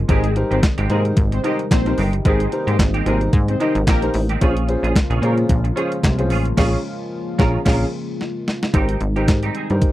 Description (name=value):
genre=early-eighties boogie funk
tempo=111 BPM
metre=4/4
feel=swing 56% on 16ths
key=Ab major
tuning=A4 = 439 Hz
part: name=chorused pulse-width pad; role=sustained chords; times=0.0-9.9 s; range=C3 to F4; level=-28 LUFS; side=left 1 dB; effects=none
part: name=plucky analog bass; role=bass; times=0.0-9.9 s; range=G1 to Bb2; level=-19 LUFS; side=equal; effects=none
part: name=analog synth brass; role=second line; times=0.1-4.1 s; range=Ab3 to Eb5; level=-24 LUFS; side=left 2 dB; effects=chorus
part: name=warm concert grand piano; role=accompaniment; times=0.1-9.9 s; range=Db4 to C5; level=-23 LUFS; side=left 1 dB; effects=none
part: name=semi-hollow electric guitar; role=riff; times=0.1-9.7 s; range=Ab3 to Bb4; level=-27 LUFS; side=right 5 dB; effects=ensemble chorus
part: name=crisp 8-bit digital drum machine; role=drums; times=0.1-9.9 s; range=crash cymbal, handclaps, hi-hat, kick drum, snare drum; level=-18 LUFS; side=equal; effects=overdrive
room=little or no reverb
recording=dry, close 1970s-style studio recording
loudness=-16 LUFS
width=side -15 dB against mid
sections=0.0-8.7 A section; 8.7-9.9 B section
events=band accent 6.6-8.7; drum fill 8.2-8.7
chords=0.1 Abmaj7; 4.4 Bbm7; 8.7 Abmaj7